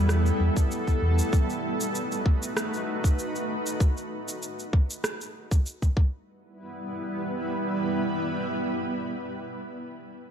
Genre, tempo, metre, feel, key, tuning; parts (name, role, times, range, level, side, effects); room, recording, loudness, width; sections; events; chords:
organic downtempo; 97 BPM; 4/4; swing 54% on 16ths; A4 = 439 Hz
granular cloud pad; sustained chords; 0.0-9.5 s; G3 to B4; -29 LUFS; right 1 dB; built-in reverb, sidechain pumping
smooth gliding synth bass; bass; 0.0-1.2 s; E2; -22 LUFS; equal; sidechain pumping
electronic rim click and shaker; drums; 0.1-5.9 s; -33 LUFS; right 1 dB; overdrive
electronic kick drum; drums; 0.6-6.1 s; -22 LUFS; equal
moderate recital hall reverb, RT60 1.5 s, digital ambience; dark, warm production; -25 LUFS; side -8 dB against mid
0.0-6.3 A section; 6.3-8.8 B section
0.0 Em; 1.3 B7; 6.0 Em